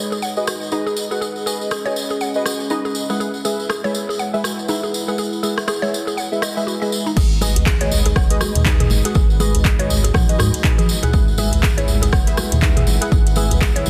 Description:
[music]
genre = afro house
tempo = 121 BPM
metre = 4/4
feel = swing 59% on 16ths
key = G# minor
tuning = A4 = 440 Hz
[part]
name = dark analog pad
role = sustained chords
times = 0.0-13.9 s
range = G#3 to F#5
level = -32 LUFS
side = equal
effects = chorus, phaser, sidechain pumping
[part]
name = deep mellow chord stab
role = stabs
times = 0.0-13.9 s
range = G#3 to F#5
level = -27 LUFS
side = equal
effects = analog chorus, sidechain pumping, delay
[part]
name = mallet-like synth pluck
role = arpeggios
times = 0.1-13.9 s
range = D#4 to F#5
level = -28 LUFS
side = equal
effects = chorus, sidechain pumping, delay
[part]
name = tambourine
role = percussion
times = 0.1-13.9 s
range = none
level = -30 LUFS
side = equal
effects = none
[part]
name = afro-pop drum kit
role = drums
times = 0.5-13.8 s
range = crash cymbal, handclaps, hi-hat, rim click, toms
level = -27 LUFS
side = equal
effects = none
[part]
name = round analog bass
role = bass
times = 7.2-13.9 s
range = F#1 to G#2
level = -22 LUFS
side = equal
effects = sidechain pumping
[part]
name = electronic kick drum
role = drums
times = 7.2-13.7 s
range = none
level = -19 LUFS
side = equal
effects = overdrive
[part]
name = congas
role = percussion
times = 7.2-13.9 s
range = none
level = -29 LUFS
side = equal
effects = none
[part]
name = djembe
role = percussion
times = 7.6-13.9 s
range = none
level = -27 LUFS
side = equal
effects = none
[sound]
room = light reverb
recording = dense, heavily limited modern master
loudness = -18 LUFS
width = mono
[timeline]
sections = 0.0-7.2 A section; 7.2-13.9 B section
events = drop 7.2-13.9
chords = 0.0 G#m7

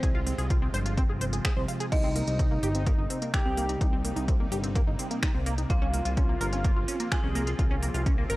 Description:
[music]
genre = melodic techno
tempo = 127 BPM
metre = 4/4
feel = straight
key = C minor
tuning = A4 = 440 Hz
[part]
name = wide unison lead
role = melody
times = 0.0-7.7 s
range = C4 to Ab4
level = -36 LUFS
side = equal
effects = lush chorus, cassette tape, sidechain pumping, analog delay
[part]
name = dark detuned synth bell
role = second line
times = 0.0-7.7 s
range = C5 to Ab5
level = -38 LUFS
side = right 1 dB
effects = chorus, sidechain pumping, analog delay
[part]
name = evolving wavetable pad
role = sustained chords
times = 0.0-8.4 s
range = C3 to F4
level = -38 LUFS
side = equal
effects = phaser, built-in reverb, sidechain pumping
[part]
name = tight sequenced synth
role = arpeggios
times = 0.0-8.4 s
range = Bb3 to F5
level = -35 LUFS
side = equal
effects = chorus, phaser, sidechain pumping, analog delay
[part]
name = fat analog bass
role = bass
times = 0.0-8.4 s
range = G1 to C2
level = -30 LUFS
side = equal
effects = sidechain pumping
[part]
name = swarming drone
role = drone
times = 0.1-8.4 s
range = C3 to C4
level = -42 LUFS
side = right 1 dB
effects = none
[part]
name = electronic kick drum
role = drums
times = 0.0-8.2 s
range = none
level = -26 LUFS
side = equal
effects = studio reverb
[part]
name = techno drum kit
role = drums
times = 0.0-8.4 s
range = crash cymbal, finger snaps, hi-hat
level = -36 LUFS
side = equal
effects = studio reverb
[sound]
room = little or no reverb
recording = dry, gritty hardware recording, transformer saturation, cassette tape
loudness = -25 LUFS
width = side -19 dB against mid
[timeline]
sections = 0.0-8.4 A section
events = none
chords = 0.0 Fm; 1.9 Cm7; 5.7 Bbm

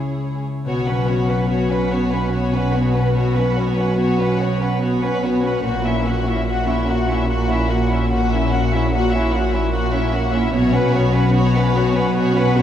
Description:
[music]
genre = cinematic, emotional film score for orchestra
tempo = 73 BPM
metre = 3/4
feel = rubato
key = unclear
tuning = A4 = 440 Hz
[part]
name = warm studio violin section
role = second line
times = 0.0-12.6 s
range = E4 to C#5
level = -24 LUFS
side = left 1 dB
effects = none
[part]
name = dark studio viola section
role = accompaniment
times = 0.0-12.6 s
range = A#3 to E4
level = -23 LUFS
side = right 1 dB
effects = none
[part]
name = concert harp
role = arpeggios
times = 0.0-12.6 s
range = A#2 to C#6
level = -24 LUFS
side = left 3 dB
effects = none
[part]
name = dark studio cello section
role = bass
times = 0.0-12.6 s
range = C#2 to B2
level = -23 LUFS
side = right 1 dB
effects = none
[part]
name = warm studio violin section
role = melody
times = 0.7-12.6 s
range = C#5 to F#5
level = -26 LUFS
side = left 4 dB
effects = none
[part]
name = dark studio double bass section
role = bass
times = 0.7-12.6 s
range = A#1 to B1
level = -23 LUFS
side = right 1 dB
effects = none
[sound]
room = wet scoring stage reverb, RT60 1.9 s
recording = heard from further back in the room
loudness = -16 LUFS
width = side -10 dB against mid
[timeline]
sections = 0.7-12.6 A section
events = none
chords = 0.0 C#m; 0.7 Bsus2; 5.6 F#7/A#; 10.5 Bsus2

